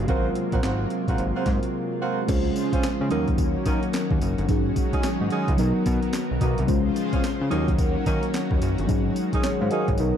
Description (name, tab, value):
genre	R&B, new jack swing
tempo	109 BPM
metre	4/4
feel	swing 62% on 16ths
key	unclear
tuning	A4 = 440 Hz
part	mellow FM electric piano	accompaniment	0.0-10.2 s	F3 to F5	-27 LUFS	left 1 dB	chorus, phaser
part	lush unison pad	sustained chords	0.0-10.2 s	C3 to C5	-29 LUFS	equal	chorus
part	fat analog bass	bass	0.0-10.1 s	Gb1 to Eb3	-27 LUFS	equal	none
part	mellow horn section	stabs	0.1-9.9 s	Ab3 to C5	-31 LUFS	right 3 dB	digital delay
part	breakbeat sampler-style drum kit	drums	0.1-10.1 s	crash cymbal, handclaps, hi-hat, kick drum, snare drum, tambourine	-26 LUFS	equal	none
room	light reverb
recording	dark, warm production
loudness	-21 LUFS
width	side -9 dB against mid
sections	0.0-2.3 A section; 2.3-10.2 B section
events	break 1.7-2.3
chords	0.1 Ab13; 2.3 Dbmaj7; 3.1 Ebm7; 4.5 Ab7sus4; 5.6 Bmaj7; 6.7 Dbmaj7; 7.5 Ebm7; 8.9 Ab7sus4